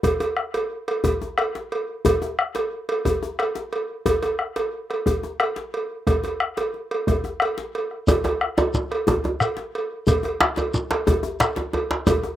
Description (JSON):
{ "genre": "west african traditional, West African drum ensemble", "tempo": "120 BPM (dotted quarters)", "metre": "12/8", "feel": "straight", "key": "none", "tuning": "none", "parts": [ { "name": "bombo", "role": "percussion", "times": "0.0-12.3 s", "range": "none", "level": "-24 LUFS", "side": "left 1 dB", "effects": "none" }, { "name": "cowbell", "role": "percussion", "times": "0.0-12.2 s", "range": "none", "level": "-25 LUFS", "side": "right 3 dB", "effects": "slapback echo" }, { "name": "djembe", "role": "percussion", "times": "0.0-12.4 s", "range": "none", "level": "-26 LUFS", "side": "left 4 dB", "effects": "slapback echo" }, { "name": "djembe", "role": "percussion", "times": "8.1-12.2 s", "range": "none", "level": "-23 LUFS", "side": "right 1 dB", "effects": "slapback echo" }, { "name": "shekere", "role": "percussion", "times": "8.1-12.2 s", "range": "none", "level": "-26 LUFS", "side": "left 1 dB", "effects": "none" } ], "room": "light reverb", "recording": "recorded outdoors, with no room sound", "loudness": "-21 LUFS", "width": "side -12 dB against mid", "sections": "0.0-8.1 A section; 8.1-12.4 B section", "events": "none", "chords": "none" }